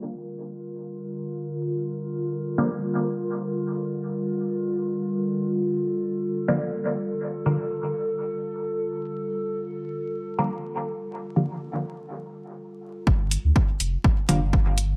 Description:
dub techno; free time; G minor; A4 = 444 Hz
warbly tape-like pad; sustained chords; 0.0-13.1 s; D3 to Bb4; -30 LUFS; equal; chorus, built-in reverb, phaser, sidechain pumping
filtered dub chord stab; stabs; 2.6-2.7, 6.5-14.4 s; D3 to Bb3; -29 LUFS; equal; phaser, sidechain pumping, dub echo
warm sub bass; bass; 13.1-15.0 s; F1 to D2; -26 LUFS; equal; sidechain pumping
electronic kick drum; drums; 13.1-14.6 s; -23 LUFS; equal
electronic hi-hat; drums; 13.3-14.9 s; -30 LUFS; equal; low-pass filter on hats, low-pass filter on snare, low-pass filter on room
light reverb; bright 1980s-style digital production, vinyl crackle, low-pass filter; -27 LUFS; mono
0.0-13.1 A section; 13.1-15.0 B section
filter sweep on ambient pad 0.0-13.1; filter sweep 0.0-13.1; break 12.1-13.1; filter sweep on synth stab 13.1-15.0
0.0 Gm7; 13.1 G7(no3)

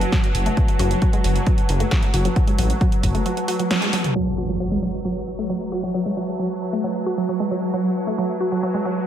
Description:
driving peak-time techno; 134 BPM; 4/4; straight; F# minor; A4 = 440 Hz
detuned saw bass; bass; 0.0-3.2 s; F#1 to A1; -21 LUFS; equal; sidechain pumping
swarming drone; drone; 0.0-9.1 s; F#3; -28 LUFS; right 1 dB; built-in reverb, phaser, sidechain pumping
techno drum kit; drums; 0.0-4.1 s; hi-hat, snare drum, toms; -27 LUFS; equal; sidechain pumping on hats, sidechain pumping on toms
warbly tape-like pad; texture; 0.0-9.1 s; F#4 to A5; -29 LUFS; right 1 dB; chorus, built-in reverb, sidechain pumping
resonant blip pluck; riff; 0.1-8.9 s; F#3 to F#4; -24 LUFS; equal; chorus, sidechain pumping, tape echo
electronic kick drum; drums; 0.1-3.1 s; -19 LUFS; equal
impact; sound effects; 4.2-5.9 s; -30 LUFS; equal
moderate lush hall reverb, RT60 1.9 s; dreamy mix soaked in reverb, low-pass filter; -19 LUFS; side -10 dB against mid
0.0-4.2 A section; 4.2-9.1 B section
break 3.3-4.2; band accent 3.7; drum fill 3.9; impact 4.2-5.9
0.0 F#m

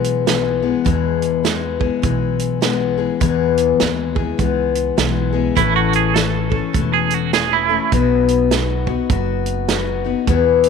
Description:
honky-tonk and classic country; 102 BPM; 4/4; swing 61% on 8ths; E major; A4 = 441 Hz
picked steel-string acoustic guitar; accompaniment; 0.0-10.7 s; E2 to A4; -18 LUFS; left 10 dB
upright bass; bass; 0.0-10.7 s; E1 to E2; -23 LUFS; right 2 dB
natural country drum kit; drums; 0.0-10.7 s; hi-hat, kick drum, snare drum; -21 LUFS; right 6 dB
twangy electric guitar; second line; 5.6-7.9 s; E4 to A4; -19 LUFS; right 15 dB; tremolo, tape echo
moderate spring reverb, RT60 3.0 s; 1960s-style stereo with parts hard left and right; -15 LUFS; side -6 dB against mid
0.9-10.7 A section
0.0 E; 5.6 A; 7.9 B

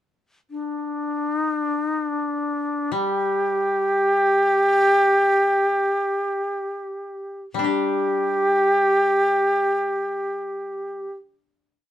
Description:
japanese traditional, Japanese chamber music; free time; A4 = 440 Hz
bright shakuhachi; melody; 0.5-11.1 s; D4 to G4; -20 LUFS; equal
koto; accompaniment; 2.9-11.1 s; G3 to G4; -28 LUFS; left 4 dB
moderate studio reverb, RT60 0.6 s; dark, warm production; -19 LUFS; side -12 dB against mid
0.0-7.7 free-time section; 7.7-11.9 final chord
slowing down 3.4-7.7

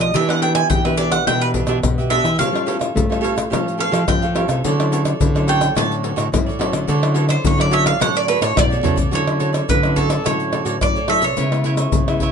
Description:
samba and choro; 107 BPM; 4/4; straight; D major; A4 = 436 Hz
bowl-back mandolin; melody; 0.0-12.3 s; A4 to A5; -20 LUFS; right 3 dB
nylon-string guitar; accompaniment; 0.0-12.3 s; G#2 to G4; -25 LUFS; left 5 dB
nylon-string guitar; bass; 0.0-12.3 s; A2 to A3; -21 LUFS; right 1 dB
cavaquinho; accompaniment; 0.1-12.3 s; D4 to E#5; -24 LUFS; right 5 dB
egg shaker, surdo, pandeiro and tamborim; percussion; 0.1-12.3 s; -21 LUFS; left 2 dB
little or no reverb; nothing above 10.7 kHz; -15 LUFS; side -6 dB against mid
0.0-9.1 A section; 9.1-12.3 B section
mandolin solo 0.0-9.1; drum fill 8.6-9.1
0.1 Em7; 2.4 A7b13; 4.6 Dmaj9; 11.4 C#m7

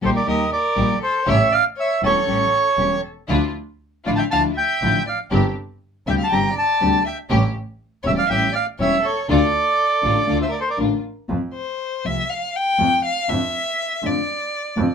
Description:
tango; 120 BPM; 4/4; rubato; D minor, F major from 11.3 s; A4 = 440 Hz
rich violin; second line; 0.0-14.9 s; A4 to G5; -24 LUFS; left 2 dB
nylon-string guitar; accompaniment; 0.0-14.9 s; C3 to G4; -23 LUFS; left 3 dB
rich studio string section; stabs; 0.0-11.0 s; A3 to G4; -28 LUFS; left 1 dB
warm double bass; bass; 0.0-14.9 s; E1 to F2; -24 LUFS; right 1 dB
bandoneon; melody; 0.1-10.8 s; C5 to Bb5; -19 LUFS; right 2 dB
moderate small room reverb, RT60 0.5 s; minimal, uncompressed stereo recording; -18 LUFS; side -6 dB against mid
0.0-11.3 A section; 11.3-14.9 B section
violin solo 11.3-14.9
0.0 Eb; 1.3 A7; 3.3 Dmadd9; 5.3 Gsus4; 7.3 A7; 9.3 Dm; 11.3 F; 13.3 Dm/F

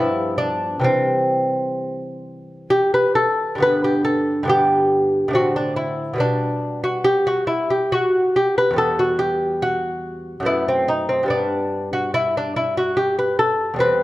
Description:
classical, baroque-style dance for lute; 64-74 BPM; 3/4; rubato; C major, G major from 3.6 s; A4 = 439 Hz
lute; solo; 0.0-14.0 s; E2 to B4; -17 LUFS; equal
wet recital hall reverb, RT60 1.6 s; dark, warm production; -17 LUFS; side -17 dB against mid
0.0-3.6 A section; 3.6-14.0 A section
0.0 G7; 0.9 C; 3.6 G; 5.4 D5/A; 6.2 G/B; 8.8 Em; 10.5 B5/F#; 11.3 Gmaj13

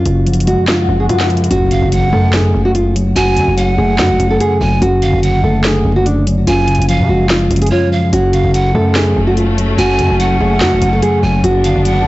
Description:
hip hop, trap; 145 BPM; 4/4; half-time; F# harmonic minor; A4 = 438 Hz
nylon-string guitar; melody; 0.0-12.0 s; D4 to A4; -16 LUFS; right 1 dB; low-pass filter, ping-pong delay
mellow tine electric piano; accompaniment; 0.0-12.1 s; F#2 to A3; -14 LUFS; left 1 dB; low-pass filter
swell and impact; sound effects; 0.2-3.2 s; -24 LUFS; left 3 dB
distorted 808-style bass; bass; 0.1-12.0 s; F#1 to C#3; -17 LUFS; equal; distortion
trap drum kit; drums; 0.1-12.0 s; handclaps, hi-hat, snare drum; -20 LUFS; equal; overdrive
breathy pan flute; second line; 1.7-12.1 s; C#5 to G#5; -19 LUFS; right 2 dB; ping-pong delay
warm symphonic string section; sustained chords; 8.1-12.1 s; F#3 to D4; -23 LUFS; left 2 dB
studio reverb; blown-out, overdriven recording, vinyl crackle, overdrive, nothing above 7.9 kHz; -10 LUFS; side -17 dB against mid
0.0-1.5 A section; 1.5-12.1 B section
swell 0.2-1.5; impact 1.5-3.2; silent gap 7.7-8.1
0.0 C#/F#; 1.5 F#m; 4.8 D/F#; 6.5 C#/F#; 8.1 F#m; 11.4 Bm7/F#

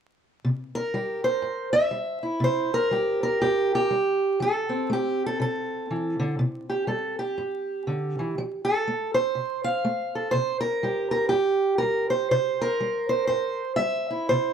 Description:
acoustic country blues, solo or duo; 121 BPM; 4/4; swing 62% on 8ths; C mixolydian; A4 = 440 Hz
fingerpicked steel-string acoustic guitar; solo; 0.4-14.5 s; G2 to F5; -23 LUFS; right 1 dB
moderate studio reverb, RT60 0.7 s; dark, warm production, vinyl crackle; -23 LUFS; side -7 dB against mid
0.5-14.5 A section
0.5 C; 4.4 F; 6.4 C5; 8.4 F; 10.3 C

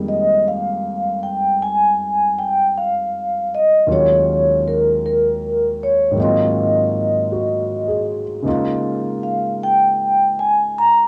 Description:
jazz ballad; 52 BPM; 4/4; swing 66% on 8ths; F minor; A4 = 441 Hz
warm grand piano; accompaniment; 0.0-11.1 s; Eb2 to Ab4; -25 LUFS; equal; cassette tape
vibraphone with soft mallets; melody; 0.1-11.1 s; Bb4 to Bb5; -18 LUFS; equal; cassette tape
light reverb; home recording on cassette; -18 LUFS; mono
0.0-11.1 A section
0.0 Fm11; 3.9 Ebm11; 6.2 Ab13; 8.5 Db69

